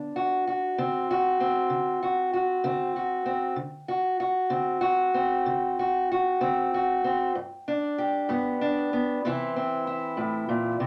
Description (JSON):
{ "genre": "blues", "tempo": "64 BPM (dotted quarters)", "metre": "12/8", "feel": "straight", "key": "unclear", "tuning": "A4 = 440 Hz", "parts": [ { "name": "fingerpicked steel-string acoustic guitar", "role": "solo", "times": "0.0-10.9 s", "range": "G2 to G4", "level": "-26 LUFS", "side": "equal", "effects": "none" } ], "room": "wet small room ambience, RT60 0.5 s", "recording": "none", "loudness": "-27 LUFS", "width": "mono", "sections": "0.0-10.9 A section", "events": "none", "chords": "0.0 D7; 7.3 G; 9.2 C7" }